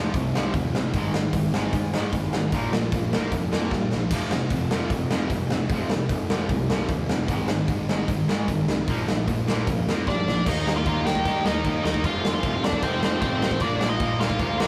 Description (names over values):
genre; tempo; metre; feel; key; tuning
punk rock; 151 BPM; 4/4; straight; unclear; A4 = 436 Hz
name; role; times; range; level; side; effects
sludgy distorted guitar; riff; 0.0-14.7 s; F2 to Eb4; -30 LUFS; equal; overdrive
sludgy distorted guitar; riff; 0.0-14.7 s; F2 to Eb4; -38 LUFS; equal; none
fuzz picked electric bass; bass; 0.0-14.7 s; F1 to Eb3; -32 LUFS; equal; overdrive
big rock drum kit; drums; 0.1-14.7 s; crash cymbal, hi-hat, kick drum, snare drum, splash cymbal; -28 LUFS; equal; none
nasal lead guitar with a parked wah; melody; 10.1-14.7 s; C4 to G5; -29 LUFS; equal; overdrive
room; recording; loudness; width
light reverb; rough rehearsal-room recording, warm saturation; -24 LUFS; mono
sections
0.0-10.5 A section; 10.5-14.7 B section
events
drum fill 3.7-4.1, 10.1-10.5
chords
0.0 F5; 0.9 Ab5; 2.5 Bb5; 4.1 F5; 7.3 Ab5; 8.9 Bb; 10.5 Eb; 12.0 F; 13.6 Bb